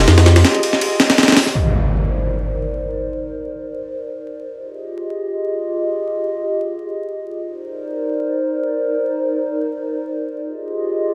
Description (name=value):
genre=drum and bass, jungle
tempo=free time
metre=none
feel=none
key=C minor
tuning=A4 = 440 Hz
part: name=warbly tape-like pad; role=sustained chords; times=0.0-11.1 s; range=Eb4 to Eb5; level=-24 LUFS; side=equal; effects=chorus, built-in reverb
part: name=breakbeat sampler-style drum kit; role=drums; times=0.1-1.5 s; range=hi-hat, ride cymbal, snare drum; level=-15 LUFS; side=equal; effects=none
part: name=impact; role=sound effects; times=1.6-3.0 s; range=none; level=-22 LUFS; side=equal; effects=none
room=light reverb, digital ambience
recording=vinyl crackle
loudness=-19 LUFS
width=mono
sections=0.0-1.6 A section; 1.6-11.1 B section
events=drop 0.0-1.6; break 0.8-1.6; impact 1.6-3.0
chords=0.0 Fm9; 1.6 Cm9; 4.5 Fm9; 7.4 Cm9; 10.4 Fm9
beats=free time